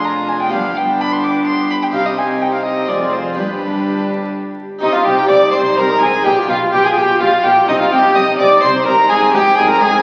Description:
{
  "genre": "classical, baroque-style concerto movement with solo episodes",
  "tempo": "126 BPM",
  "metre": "3/4",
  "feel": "straight",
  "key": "C minor",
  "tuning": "A4 = 440 Hz",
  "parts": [
    { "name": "warm chamber violin section", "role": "melody", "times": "0.0-10.0 s", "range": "G4 to Eb6", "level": "-20 LUFS", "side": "equal", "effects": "none" },
    { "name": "warm violin", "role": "melody", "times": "0.0-10.0 s", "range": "Eb4 to D6", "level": "-19 LUFS", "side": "equal", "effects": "none" },
    { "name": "warm chamber violin section", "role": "second line", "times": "0.0-10.0 s", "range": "D4 to Eb5", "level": "-22 LUFS", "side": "equal", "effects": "none" },
    { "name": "dark chamber viola section", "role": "accompaniment", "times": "0.0-10.0 s", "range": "G3 to G4", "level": "-25 LUFS", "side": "equal", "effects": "none" },
    { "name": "harpsichord", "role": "accompaniment", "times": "0.0-10.0 s", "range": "F2 to Ab4", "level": "-25 LUFS", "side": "equal", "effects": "none" },
    { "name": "dark chamber cello section", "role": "bass", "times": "0.0-9.9 s", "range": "F2 to C3", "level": "-30 LUFS", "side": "equal", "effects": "none" },
    { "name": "rich chamber double bass section", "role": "bass", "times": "0.0-9.9 s", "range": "F1 to C2", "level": "-33 LUFS", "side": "equal", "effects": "none" }
  ],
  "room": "wet recital hall reverb, RT60 1.8 s",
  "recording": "very old 78 rpm record, vinyl crackle",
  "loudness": "-14 LUFS",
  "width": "mono",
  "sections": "0.0-4.8 A section; 4.8-10.0 B section",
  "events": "none",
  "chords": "0.0 Ddim/F; 0.5 G; 1.9 Cm; 2.9 Fm; 3.4 G; 4.8 Cm; 6.2 G7/B; 7.7 Cm; 9.1 Ab"
}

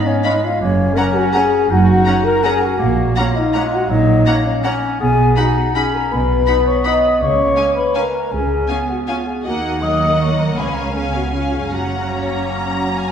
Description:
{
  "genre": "classical",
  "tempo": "139-176 BPM",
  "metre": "3/4",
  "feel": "rubato",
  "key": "F# major",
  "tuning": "A4 = 441 Hz",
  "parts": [
    { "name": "clear clarinet", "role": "second line", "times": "0.0-13.1 s", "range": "F#3 to D#4", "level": "-24 LUFS", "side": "left 1 dB", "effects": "none" },
    { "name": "mellow hollow silver concert flute", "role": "second line", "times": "0.0-13.1 s", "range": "C#5 to D#6", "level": "-23 LUFS", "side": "left 1 dB", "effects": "none" },
    { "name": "mellow French horn section", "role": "sustained chords", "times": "0.0-13.1 s", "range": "C#4 to D#5", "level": "-19 LUFS", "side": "left 2 dB", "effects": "none" },
    { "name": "warm studio violin section", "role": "melody", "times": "0.2-13.1 s", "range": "F#5 to B5", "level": "-27 LUFS", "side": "left 2 dB", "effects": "none" },
    { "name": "warm studio violin section", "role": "second line", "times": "0.2-13.1 s", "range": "C#5 to A#5", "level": "-29 LUFS", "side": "left 2 dB", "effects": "none" },
    { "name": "warm studio viola section", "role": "accompaniment", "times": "0.3-13.1 s", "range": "A#3 to D#4", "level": "-27 LUFS", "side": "right 1 dB", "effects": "none" },
    { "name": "warm studio cello section", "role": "bass", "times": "0.6-13.1 s", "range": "F#2 to D#3", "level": "-22 LUFS", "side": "right 3 dB", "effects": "none" },
    { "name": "warm studio double bass section", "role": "bass", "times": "0.6-13.1 s", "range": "F#1 to D#2", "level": "-22 LUFS", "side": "right 2 dB", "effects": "none" },
    { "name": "timpani", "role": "percussion", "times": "10.6-12.3 s", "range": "F#2 to C#3", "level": "-33 LUFS", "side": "equal", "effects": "none" }
  ],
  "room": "wet scoring stage reverb, RT60 1.7 s",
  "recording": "heard from further back in the room",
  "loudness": "-14 LUFS",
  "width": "side -8 dB against mid",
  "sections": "0.0-13.1 A section",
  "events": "none",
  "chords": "0.0 C#7; 0.6 F#; 2.8 F#/A#; 5.0 B; 7.2 C#5; 9.4 D#m; 10.6 C#7; 11.7 F#"
}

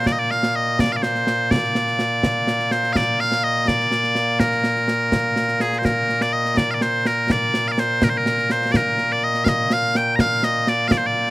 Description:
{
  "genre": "scottish traditional, Scottish pipe music",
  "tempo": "83 BPM (dotted quarters)",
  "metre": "6/8",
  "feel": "straight",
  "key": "Bb major",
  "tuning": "A4 = 440 Hz",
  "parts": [
    { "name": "loud bright bagpipes", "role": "melody", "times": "0.0-11.3 s", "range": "Bb2 to Bb5", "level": "-18 LUFS", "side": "equal", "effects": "none" },
    { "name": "concert snare drum and concert bass drum", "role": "drums", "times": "0.1-11.3 s", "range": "none", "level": "-23 LUFS", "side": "equal", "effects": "none" }
  ],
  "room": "little or no reverb",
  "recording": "recorded outdoors, with no room sound",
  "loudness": "-17 LUFS",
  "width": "side -19 dB against mid",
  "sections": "0.0-5.8 A section; 5.8-11.3 B section",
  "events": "none",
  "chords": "none"
}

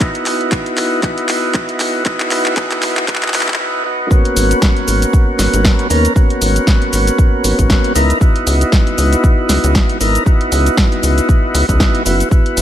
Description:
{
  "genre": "deep house",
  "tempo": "117 BPM",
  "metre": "4/4",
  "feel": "swing 56% on 16ths",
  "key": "G# minor",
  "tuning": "A4 = 440 Hz",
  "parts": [
    { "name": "tonewheel organ", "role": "stabs", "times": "0.0-12.6 s", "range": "A#3 to A#4", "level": "-16 LUFS", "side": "equal", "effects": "slow rotary speaker, sidechain pumping, tape echo" },
    { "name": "electronic kick drum", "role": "drums", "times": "0.0-12.4 s", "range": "none", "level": "-12 LUFS", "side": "equal", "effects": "none" },
    { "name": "punchy analog drum machine", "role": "drums", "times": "0.0-12.6 s", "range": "cabasa, handclaps, hi-hat, snare drum", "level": "-18 LUFS", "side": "equal", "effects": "none" },
    { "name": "rubbery square bass", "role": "bass", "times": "4.4-12.6 s", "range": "F#1 to D#2", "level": "-14 LUFS", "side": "equal", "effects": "sidechain pumping" }
  ],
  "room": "light reverb, digital ambience",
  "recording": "high-pass filter, lossy compression artefacts",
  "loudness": "-11 LUFS",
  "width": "side -11 dB against mid",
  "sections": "0.0-4.1 A section; 4.1-12.6 B section",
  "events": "build-up 0.0-4.1; drum fill 0.0-3.6; break 3.6-4.1; drop 4.1-12.6",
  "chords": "0.0 Badd11; 3.9 B; 4.1 G#m11; 8.0 C#m11; 12.1 F#7sus4"
}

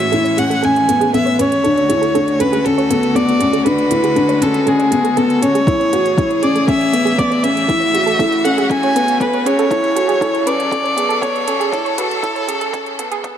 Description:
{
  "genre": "piano and strings electronica",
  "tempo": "119 BPM",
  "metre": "4/4",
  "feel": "straight",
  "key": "A major",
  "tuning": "A4 = 440 Hz",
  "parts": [
    { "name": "rich violin", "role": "melody", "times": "0.0-13.2 s", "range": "G#4 to G#5", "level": "-18 LUFS", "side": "equal", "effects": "tape echo" },
    { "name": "clear string quartet", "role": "sustained chords", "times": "0.0-13.4 s", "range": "D2 to A4", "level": "-24 LUFS", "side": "left 2 dB", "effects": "sidechain pumping" },
    { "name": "felt-muted upright piano", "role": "riff", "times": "0.0-13.4 s", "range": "B3 to F#4", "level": "-17 LUFS", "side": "left 1 dB", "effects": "tape echo" },
    { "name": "electronic hi-hat", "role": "drums", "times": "0.0-13.3 s", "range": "none", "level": "-30 LUFS", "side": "right 5 dB", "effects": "none" },
    { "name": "soft round pluck", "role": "arpeggios", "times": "0.1-13.3 s", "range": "G#4 to D5", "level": "-23 LUFS", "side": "right 6 dB", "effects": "chorus, cassette tape, sidechain pumping, tape echo" },
    { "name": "electronic kick drum", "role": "drums", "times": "5.7-13.3 s", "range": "none", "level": "-20 LUFS", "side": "equal", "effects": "none" }
  ],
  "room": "moderate huge ambient reverb, RT60 4.6 s",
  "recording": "dark, warm production, high-pass filter",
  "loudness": "-13 LUFS",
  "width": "side -9 dB against mid",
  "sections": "0.0-13.4 A section",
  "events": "build-up 0.0-13.4; filter sweep on synth arpeggio sound 0.0-13.4; filter sweep 0.0-13.4",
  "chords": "0.0 Amaj7; 1.6 D; 5.7 Amaj7; 9.7 F#m"
}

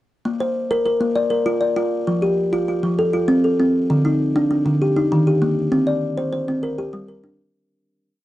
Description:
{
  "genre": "southern african traditional",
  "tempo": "132 BPM (dotted quarters)",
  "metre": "12/8",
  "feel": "straight",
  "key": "Bb major",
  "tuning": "A4 = 440 Hz",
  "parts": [
    { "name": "kalimba", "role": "solo", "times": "0.3-7.5 s", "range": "D3 to D5", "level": "-17 LUFS", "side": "equal", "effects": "none" }
  ],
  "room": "light reverb",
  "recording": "dark, warm production",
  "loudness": "-17 LUFS",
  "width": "side -15 dB against mid",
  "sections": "0.3-7.5 A section",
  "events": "fade-out 5.7-7.5",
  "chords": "0.3 Bb; 2.1 F; 3.9 N.C.; 4.8 Eb; 5.7 Csus2; 6.6 Gm"
}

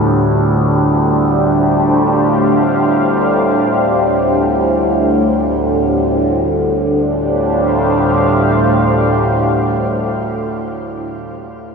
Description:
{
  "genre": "dark ambient drone",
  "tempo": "free time",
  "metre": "none",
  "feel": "none",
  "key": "D minor",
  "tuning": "A4 = 440 Hz",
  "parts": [
    { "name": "deep dark ambient pad", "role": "sustained chords", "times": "0.0-11.2 s", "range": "D4 to F5", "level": "-15 LUFS", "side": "equal", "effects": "chorus, built-in reverb, shimmer reverb" },
    { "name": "overtone-sweeping drone", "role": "drone", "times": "0.0-10.7 s", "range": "D2 to A2", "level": "-15 LUFS", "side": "equal", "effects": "chorus, built-in reverb, phaser" },
    { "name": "quartz singing bowl", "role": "texture", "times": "0.0-6.2 s", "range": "none", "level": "barely audible", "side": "none", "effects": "none" }
  ],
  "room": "wet huge ambient reverb, RT60 7.5 s",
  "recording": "none",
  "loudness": "-12 LUFS",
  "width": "side -5 dB against mid",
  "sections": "0.0-6.2 A section; 6.2-10.7 B section",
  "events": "none",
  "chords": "0.0 Dm"
}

